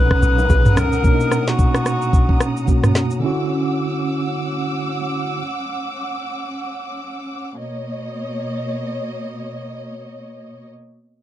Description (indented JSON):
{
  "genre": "amapiano",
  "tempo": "110 BPM",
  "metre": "4/4",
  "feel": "swing 58% on 16ths",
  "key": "B major",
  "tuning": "A4 = 440 Hz",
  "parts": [
    { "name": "breathy alto saxophone", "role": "melody", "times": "0.0-3.0 s", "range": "F#4 to B4", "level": "-22 LUFS", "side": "left 2 dB", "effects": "digital delay" },
    { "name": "tine electric piano", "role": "accompaniment", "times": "0.0-5.4 s", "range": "A#2 to F#4", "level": "-21 LUFS", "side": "right 1 dB", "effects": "fast stereo tremolo" },
    { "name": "dark studio string section", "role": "sustained chords", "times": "0.0-10.7 s", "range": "B2 to E6", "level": "-26 LUFS", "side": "right 1 dB", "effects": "sidechain pumping" },
    { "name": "deep log drum bass", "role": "bass", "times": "0.0-1.0 s", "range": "A#1 to C#2", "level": "-19 LUFS", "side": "equal", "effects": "none" },
    { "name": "smooth R&B drum kit", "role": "drums", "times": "0.1-3.2 s", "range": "kick drum, rim click, shaker, snare drum, toms", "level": "-16 LUFS", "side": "equal", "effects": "none" },
    { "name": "bongos", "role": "percussion", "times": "0.4-0.9 s", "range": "none", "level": "-28 LUFS", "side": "left 4 dB", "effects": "none" }
  ],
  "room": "light reverb",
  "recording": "dark, warm production",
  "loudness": "-17 LUFS",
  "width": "side -12 dB against mid",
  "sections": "0.0-7.6 A section; 7.6-11.2 B section",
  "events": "none",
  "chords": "0.0 Bmaj9; 3.2 Dmaj9; 7.6 Bmaj9"
}